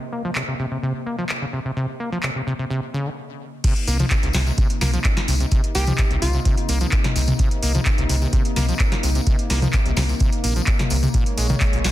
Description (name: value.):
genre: acid house.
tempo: 128 BPM.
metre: 4/4.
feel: straight.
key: C phrygian.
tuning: A4 = 445 Hz.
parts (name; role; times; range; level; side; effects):
warm analog pad; sustained chords; 0.0-11.9 s; C3 to Eb5; -30 LUFS; left 1 dB; chorus, sidechain pumping.
acid bass, saw; riff; 0.1-11.9 s; Bb2 to Bb3; -27 LUFS; equal; tube saturation, sidechain pumping, ping-pong delay.
booming analog drum machine; drums; 0.4-11.9 s; crash cymbal, handclaps, hi-hat, snare drum, toms; -25 LUFS; left 1 dB; none.
electronic kick drum; drums; 3.6-11.7 s; none; -20 LUFS; equal; none.
tambourine; percussion; 3.6-11.9 s; none; -33 LUFS; left 5 dB; none.
round analog bass; bass; 3.9-11.9 s; Bb1 to C2; -21 LUFS; equal; sidechain pumping.
hollow square pluck; melody; 5.8-6.7 s; F4 to G4; -29 LUFS; equal; chorus, ping-pong delay.
room: little or no reverb.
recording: dense, heavily limited modern master.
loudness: -18 LUFS.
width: side -14 dB against mid.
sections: 0.0-3.6 A section; 3.6-11.9 B section.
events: stop 3.2-3.6; drop 3.6-11.9.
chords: 0.0 Cm7; 11.1 Bbm7.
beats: 0.36 0.83 1.30 | 1.77 2.23 2.70 3.17 | 3.64 4.11 4.58 5.05 | 5.52 5.99 6.45 6.92 | 7.39 7.86 8.33 8.80 | 9.27 9.73 10.20 10.67 | 11.14 11.61.